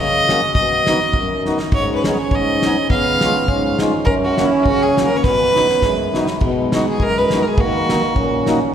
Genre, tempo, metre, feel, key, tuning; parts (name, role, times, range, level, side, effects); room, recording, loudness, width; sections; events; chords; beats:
alpine folk, alpine dance band; 102 BPM; 2/4; swing 54% on 8ths; B major; A4 = 443 Hz
clear fiddle; melody; 0.0-8.5 s; E4 to E#5; -18 LUFS; equal
mellow accordion; accompaniment; 0.0-8.6 s; F#2 to G#4; -20 LUFS; left 2 dB
loose indie drum kit; drums; 0.3-8.6 s; crash cymbal, kick drum, snare drum; -21 LUFS; equal
clear euphonium; second line; 1.7-8.7 s; F#3 to D#4; -20 LUFS; right 2 dB
wet church reverb, RT60 3.3 s; recorded in a church or concert hall; -14 LUFS; side -9 dB against mid
0.0-6.4 A section; 6.4-8.7 B section
drum fill 1.4, 5.2-6.4
0.0 F#6; 0.6 B; 1.7 G#m; 2.9 C#7; 4.1 F#; 5.2 B; 7.6 D#m
| 0.55 1.14 | 1.73 2.32 | 2.91 3.49 | 4.07 4.66 | 5.24 5.83 | 6.42 7.00 | 7.58 8.16 | 8.74